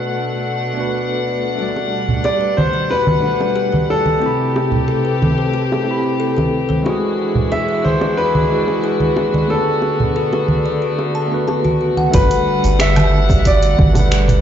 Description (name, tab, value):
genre	sunset chillout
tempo	91 BPM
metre	4/4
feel	straight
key	unclear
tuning	A4 = 439 Hz
part	tine electric piano	accompaniment	0.0-14.4 s	G3 to B5	-22 LUFS	moving between left 4 dB and right 4 dB	medium tremolo, auto-pan, ping-pong delay
part	warm chamber string section	sustained chords	0.0-14.4 s	B2 to F#5	-22 LUFS	left 1 dB	low-pass filter
part	kalimba	arpeggios	1.6-14.4 s	F#4 to A5	-23 LUFS	left 2 dB	ping-pong delay
part	bongos and congas	percussion	1.8-14.4 s	none	-19 LUFS	right 1 dB	none
part	clear concert grand piano	melody	2.2-14.4 s	A4 to E5	-19 LUFS	left 1 dB	digital delay
part	warm sub bass	bass	12.1-14.4 s	G1	-15 LUFS	right 1 dB	none
part	deep house drum kit	drums	12.1-14.4 s	cabasa, finger snaps, hi-hat, woodblock	-24 LUFS	right 2 dB	overdrive
part	electronic kick drum	drums	12.1-13.9 s	none	-15 LUFS	right 1 dB	overdrive
room	light reverb, small room ambience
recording	played on a big sound system in a bare room, large studio reverb, nothing above 7.6 kHz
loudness	-14 LUFS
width	side -9 dB against mid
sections	0.0-12.1 A section; 12.1-14.4 B section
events	filter sweep on string section 0.0-12.1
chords	0.0 Bm7; 1.6 Gmaj7; 4.2 Am9; 6.9 E9; 9.5 Bm7; 12.1 Gmaj7